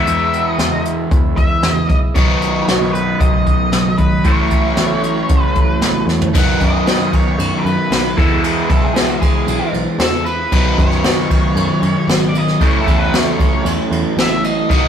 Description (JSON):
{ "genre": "psychedelic rock", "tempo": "115 BPM", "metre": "4/4", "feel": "straight", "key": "B mixolydian", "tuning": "A4 = 440 Hz", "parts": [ { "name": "octave-fuzz lead guitar", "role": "melody", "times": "0.0-14.9 s", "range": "F#4 to F#5", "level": "-21 LUFS", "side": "left 1 dB", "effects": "distortion" }, { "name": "combo organ", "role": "sustained chords", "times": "0.0-14.9 s", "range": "F#3 to E5", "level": "-27 LUFS", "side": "right 4 dB", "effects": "none" }, { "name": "overdriven semi-hollow guitar", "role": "riff", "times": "0.0-14.9 s", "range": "A2 to F#4", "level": "-18 LUFS", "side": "equal", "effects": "phaser" }, { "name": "picked electric bass", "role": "bass", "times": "0.0-14.9 s", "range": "G#1 to F#2", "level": "-23 LUFS", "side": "equal", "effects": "none" }, { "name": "jazz brush drum kit", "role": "drums", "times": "0.1-14.8 s", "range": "crash cymbal, hi-hat, kick drum, ride cymbal, snare drum, toms", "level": "-16 LUFS", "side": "equal", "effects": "none" } ], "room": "light reverb", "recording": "rough rehearsal-room recording", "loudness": "-12 LUFS", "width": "side -8 dB against mid", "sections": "0.0-6.3 A section; 6.3-14.9 B section", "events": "drum fill 6.1; lead electric guitar solo 6.3-14.9", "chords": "0.0 E; 2.2 B; 4.3 A6; 6.3 B; 8.2 E; 10.5 B; 12.6 A6" }